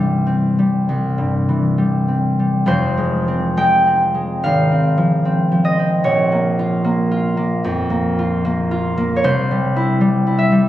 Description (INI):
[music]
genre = classical, solo harp piece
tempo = 62-78 BPM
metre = 4/4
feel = rubato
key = F minor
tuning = A4 = 441 Hz
[part]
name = concert harp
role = solo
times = 0.0-10.7 s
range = F1 to G5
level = -15 LUFS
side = equal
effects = none
[sound]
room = moderate recital hall reverb, RT60 1.6 s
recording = recorded on a phone in the room, club reverb, compression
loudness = -15 LUFS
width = side -13 dB against mid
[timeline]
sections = 0.0-2.7 A section; 2.7-10.7 B section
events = none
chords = 0.0 C; 2.7 Fm; 4.4 Fm/Ab; 6.0 Bbm; 9.2 C